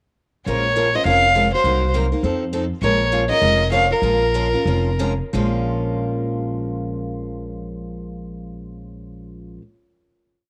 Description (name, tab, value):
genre	acoustic string swing (jazz manouche)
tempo	173-204 BPM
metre	4/4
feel	swing 60% on 8ths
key	Bb minor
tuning	A4 = 440 Hz
part	warm violin	melody	0.5-5.0 s	Bb4 to F5	-20 LUFS	equal	cassette tape
part	picked steel-string acoustic guitar	second line	0.5-5.0 s	F4 to Db5	-32 LUFS	equal	cassette tape
part	picked steel-string acoustic guitar	accompaniment	0.5-9.6 s	Bb2 to Bb4	-27 LUFS	equal	cassette tape
part	upright bass	bass	0.5-9.6 s	F1 to F2	-26 LUFS	equal	none
room	light reverb, small room reverb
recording	home recording on cassette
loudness	-19 LUFS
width	mono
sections	0.5-5.3 A section; 5.3-8.1 final chord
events	slowing down 2.8-5.3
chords	0.5 Bbm7; 1.6 Cm7b5; 2.2 F7; 2.8 Bbm7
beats	| 0.47 0.77 1.06 1.35 | 1.65 1.94 2.24 2.54 | 2.83 3.13 3.42 3.73 | 4.03 4.35 4.67 5.00 | 5.34 5.69 6.04 6.38 | 6.73 7.08 7.42 7.77